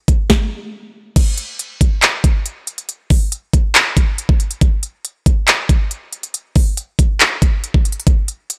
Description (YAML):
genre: hip hop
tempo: 139 BPM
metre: 4/4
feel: half-time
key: none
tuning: none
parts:
  - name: trap drum kit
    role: drums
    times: 0.1-8.6 s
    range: crash cymbal, handclaps, hi-hat, kick drum, snare drum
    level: -15 LUFS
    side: equal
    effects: overdrive
room: little or no reverb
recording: dry, gritty hardware recording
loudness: -16 LUFS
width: mono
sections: 0.0-1.2 A section; 1.2-8.6 B section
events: stop 0.3-1.2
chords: none